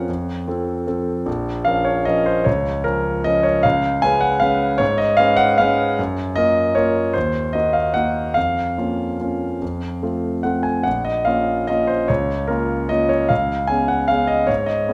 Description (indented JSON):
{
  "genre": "classical, piano waltz",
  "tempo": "140-161 BPM",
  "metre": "3/4",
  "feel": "rubato",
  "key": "Bb minor",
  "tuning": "A4 = 441 Hz",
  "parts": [
    { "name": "warm concert grand piano", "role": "solo", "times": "0.0-14.9 s", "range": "Bb1 to Ab5", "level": "-19 LUFS", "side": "equal", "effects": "none" }
  ],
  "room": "moderate recital hall reverb, RT60 1.5 s",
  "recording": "none",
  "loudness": "-19 LUFS",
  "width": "mono",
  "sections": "0.0-1.3 A section; 1.3-14.9 B section",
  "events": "none",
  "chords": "0.1 F; 1.3 Bbm; 2.5 Bbm/Db; 3.6 Db7; 6.0 Gbmaj7; 7.2 Cm7b5/Eb; 8.4 Bbm/F; 9.6 F; 10.9 Bbm; 12.1 Bbm/Db; 13.3 Db7",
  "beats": "| 0.08 0.47 0.88 | 1.27 1.67 2.07 | 2.46 2.85 3.25 | 3.64 4.03 4.42 | 4.81 5.19 5.59 | 5.98 6.37 6.77 | 7.15 7.54 7.96 | 8.36 8.77 9.20 | 9.61 10.02 10.45 | 10.86 11.27 11.69 | 12.09 12.49 12.90 | 13.30 13.69 14.10 | 14.49 14.88"
}